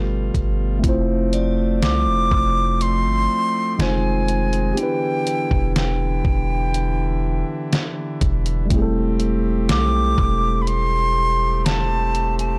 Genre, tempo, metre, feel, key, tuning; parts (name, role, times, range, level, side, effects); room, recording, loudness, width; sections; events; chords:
contemporary R&B; 61 BPM; 4/4; straight; A4 = 443 Hz
mellow tine electric piano; accompaniment; 0.0-12.6 s; G3 to C5; -27 LUFS; equal
pipe organ, foundations; sustained chords; 0.0-12.6 s; B2 to G4; -31 LUFS; equal
long sustained 808-style bass; bass; 0.0-12.6 s; E1 to C2; -24 LUFS; equal
detuned 8-bit digital drum machine; drums; 0.3-12.6 s; hi-hat, kick drum, snare drum; -24 LUFS; equal
glassy synth bell; texture; 1.3-5.2 s; Ab4 to D5; -39 LUFS; equal
breathy silver concert flute; melody; 1.8-12.6 s; G5 to D6; -25 LUFS; equal; digital delay
little or no reverb; dark, warm production; -20 LUFS; mono
0.8-12.6 A section
0.0 G9; 0.8 Fmaj7; 3.8 Fm7; 4.8 Em7; 8.7 Am7/E